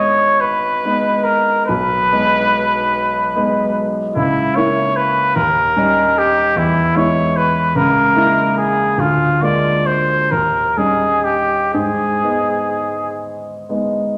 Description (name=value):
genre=classical, romantic duo for trumpet and grand piano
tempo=40-51 BPM (dotted quarters)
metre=6/8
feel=rubato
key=G# minor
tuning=A4 = 440 Hz
part: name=clear trumpet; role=melody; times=0.0-13.2 s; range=E4 to D5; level=-18 LUFS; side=equal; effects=none
part: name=warm grand piano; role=accompaniment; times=0.0-14.2 s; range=G#1 to E#4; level=-20 LUFS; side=equal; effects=none
room=wet recital hall reverb, RT60 1.4 s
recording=none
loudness=-16 LUFS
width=mono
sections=0.0-14.2 A section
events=none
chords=0.0 G#m; 1.7 G#m/B; 4.2 A#dim/C#; 5.4 D#7; 6.6 E; 7.8 A#m7b5/C#; 9.0 A#7/D; 10.3 D#7; 11.7 G#m